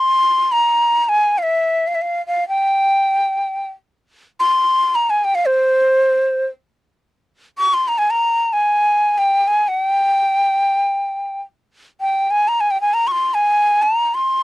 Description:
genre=Arabic maqam ensemble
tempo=free time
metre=none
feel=none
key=C maqam hijaz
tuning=A4 = 440 Hz
part: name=breathy bright ney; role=solo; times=0.0-14.4 s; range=C5 to Db6+34c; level=-14 LUFS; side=equal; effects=none
room=light reverb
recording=dry, close 1970s-style studio recording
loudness=-15 LUFS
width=side -17 dB against mid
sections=0.0-7.1 A section; 7.1-14.4 A section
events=none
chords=none

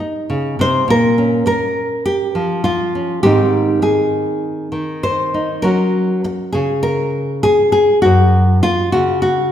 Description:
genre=folk, solo fingerstyle acoustic guitar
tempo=101 BPM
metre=4/4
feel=rubato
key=unclear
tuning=A4 = 440 Hz
part: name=nylon-string guitar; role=solo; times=0.0-9.5 s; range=Gb2 to C5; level=-13 LUFS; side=equal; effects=none
room=wet recital hall reverb, RT60 1.6 s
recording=recorded in a church or concert hall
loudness=-13 LUFS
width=side -10 dB against mid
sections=0.0-5.6 A section; 5.6-9.5 B section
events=none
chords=0.0 Eb; 0.9 Bbm; 3.2 Ab; 5.6 Gb

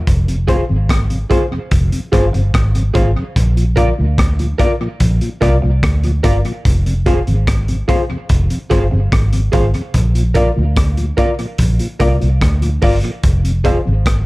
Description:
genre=roots reggae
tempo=73 BPM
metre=4/4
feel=straight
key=F dorian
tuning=A4 = 440 Hz
part: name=vintage muted fingered electric bass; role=bass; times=0.1-14.3 s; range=F1 to D2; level=-15 LUFS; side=equal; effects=none
part: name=crunchy breakbeat drum kit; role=drums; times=0.1-14.3 s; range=hi-hat, kick drum, rim click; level=-16 LUFS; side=equal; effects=none
part: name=mellow tonewheel organ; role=accompaniment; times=0.3-13.9 s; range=F2 to F4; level=-24 LUFS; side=left 1 dB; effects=chorus vibrato, slow rotary speaker
part: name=electric guitar at the edge of break-up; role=accompaniment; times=0.5-13.8 s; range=Ab4 to F5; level=-24 LUFS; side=right 5 dB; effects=lush chorus, tape echo
part: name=reed electric piano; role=stabs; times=0.5-13.8 s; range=F4 to D5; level=-20 LUFS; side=left 3 dB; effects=fast tremolo, plate reverb
part: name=cowbell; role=percussion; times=13.7-13.8 s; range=none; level=-25 LUFS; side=right 5 dB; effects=none
room=light reverb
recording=dark, warm production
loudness=-12 LUFS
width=side -20 dB against mid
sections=0.1-14.3 A section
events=none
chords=0.1 Fm; 3.4 Bb; 6.7 Fm; 9.9 Bb; 13.2 Fm

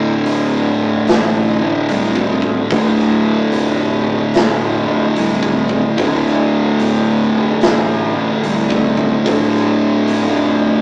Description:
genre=stoner and doom metal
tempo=73 BPM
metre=4/4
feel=swing 65% on 8ths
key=D minor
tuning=A4 = 440 Hz
part: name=thick fuzz guitar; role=riff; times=0.0-10.8 s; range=D2 to D3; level=-20 LUFS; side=equal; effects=distortion
part: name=thick fuzz guitar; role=riff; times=0.0-10.8 s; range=D2 to D3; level=-20 LUFS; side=equal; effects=distortion
part: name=fuzz fingered electric bass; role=bass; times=0.0-10.7 s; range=D1 to C2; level=-22 LUFS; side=equal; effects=overdrive
part: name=big rock drum kit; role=drums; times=0.3-10.3 s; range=hi-hat, kick drum, snare drum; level=-22 LUFS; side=equal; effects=none
room=moderate booth ambience, RT60 0.3 s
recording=rough rehearsal-room recording, warm saturation, small speaker sound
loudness=-15 LUFS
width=mono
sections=0.0-10.8 A section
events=none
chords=0.0 Dm

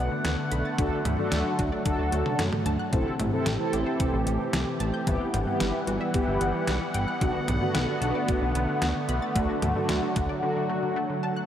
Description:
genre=synth-pop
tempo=112 BPM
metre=4/4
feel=straight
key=unclear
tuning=A4 = 440 Hz
part: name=sweeping resonant pad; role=sustained chords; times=0.0-11.5 s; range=D3 to F#5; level=-29 LUFS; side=equal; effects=chorus
part: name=wide unison pluck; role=arpeggios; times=0.0-11.4 s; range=C3 to A6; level=-35 LUFS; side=left 1 dB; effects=wide subtle chorus, tape echo
part: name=fat analog bass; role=bass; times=0.0-10.3 s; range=G1 to F#2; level=-29 LUFS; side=equal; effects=none
part: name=detuned 8-bit digital drum machine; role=drums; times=0.2-10.3 s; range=hi-hat, kick drum, snare drum, toms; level=-31 LUFS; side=equal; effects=overdrive
part: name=mellow synth brass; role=accompaniment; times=0.8-11.0 s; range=A3 to A4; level=-30 LUFS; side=equal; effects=chorus
room=wet cathedral reverb, RT60 5.5 s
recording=dreamy mix soaked in reverb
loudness=-24 LUFS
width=side -10 dB against mid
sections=0.0-11.5 A section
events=silent gap 10.4-11.5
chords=0.0 Bm7; 0.8 D; 2.9 Am7; 5.1 Emadd9/G; 7.2 Bm7; 9.4 D

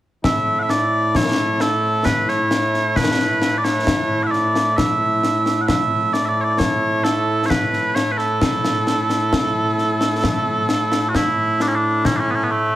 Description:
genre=scottish traditional, Scottish pipe music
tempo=66 BPM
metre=3/4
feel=straight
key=A major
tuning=A4 = 437 Hz
part: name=mellow small bagpipes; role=melody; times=0.2-12.8 s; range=A2 to F#5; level=-18 LUFS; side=right 1 dB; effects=slapback echo
part: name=concert snare drum and concert bass drum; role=drums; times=0.2-12.3 s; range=none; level=-22 LUFS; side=left 2 dB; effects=none
room=light reverb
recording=heavily compressed radio sound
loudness=-16 LUFS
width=side -14 dB against mid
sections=0.2-11.1 A section; 11.1-12.8 A section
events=none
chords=none

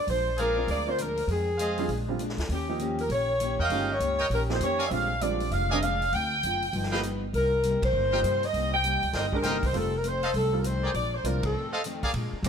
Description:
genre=jazz, big band swing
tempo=199 BPM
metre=4/4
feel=swing 63% on 8ths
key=Bb mixolydian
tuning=A4 = 440 Hz
part: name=warm saxophone section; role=melody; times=0.0-11.8 s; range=G4 to G5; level=-27 LUFS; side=equal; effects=none
part: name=picked plugged-in steel-string acoustic guitar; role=accompaniment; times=0.1-12.5 s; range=F2 to G4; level=-36 LUFS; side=left 4 dB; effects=none
part: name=upright bass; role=bass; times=0.1-12.5 s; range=F1 to Bb2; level=-31 LUFS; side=equal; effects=none
part: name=vintage drum kit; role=drums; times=0.1-12.5 s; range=hi-hat, kick drum, ride cymbal, snare drum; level=-38 LUFS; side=equal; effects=none
part: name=bright trumpet section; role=stabs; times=0.4-12.1 s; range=Ab4 to Ab5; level=-33 LUFS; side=right 1 dB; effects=none
part: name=clear baby grand piano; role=accompaniment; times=0.6-12.5 s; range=D3 to D5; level=-34 LUFS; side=right 5 dB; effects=none
room=light reverb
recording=none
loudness=-25 LUFS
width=side -7 dB against mid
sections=0.0-12.1 A section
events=band accent 7.8, 11.4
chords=0.0 Bb7; 1.3 Fm7; 1.9 Bb7; 2.5 Eb7; 4.9 Bb7; 6.1 Dm7; 6.7 G7alt; 7.3 Cm7; 9.7 F7; 10.9 Bb7; 11.5 F7

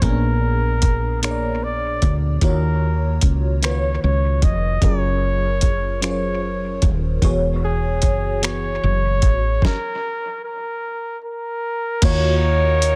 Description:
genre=slow six-eight R&B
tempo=50 BPM (dotted quarters)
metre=6/8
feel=straight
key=unclear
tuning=A4 = 439 Hz
part: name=warm flugelhorn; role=melody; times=0.0-13.0 s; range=G#4 to D#5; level=-27 LUFS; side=equal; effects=dub echo
part: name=FM electric piano with soft pad layer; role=accompaniment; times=0.0-13.0 s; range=A#2 to D5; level=-28 LUFS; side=equal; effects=chorus, phaser, dub echo
part: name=woody fretless electric bass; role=bass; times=0.0-13.0 s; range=D#1 to D#2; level=-23 LUFS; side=equal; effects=none
part: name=dusty soul sampler-style drum kit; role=drums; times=0.0-13.0 s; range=crash cymbal, finger snaps, hi-hat, kick drum, snare drum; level=-21 LUFS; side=equal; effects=none
part: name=mellow horn section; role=stabs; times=12.0-13.0 s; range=A#3 to A#4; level=-32 LUFS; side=equal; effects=none
room=little or no reverb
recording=echo-heavy mix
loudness=-20 LUFS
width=mono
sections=0.0-12.0 A section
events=stop 9.6-12.0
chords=0.0 A#7b9; 2.4 D#m7; 4.8 F#maj9; 7.2 E69; 9.6 N.C.; 12.0 D#m7

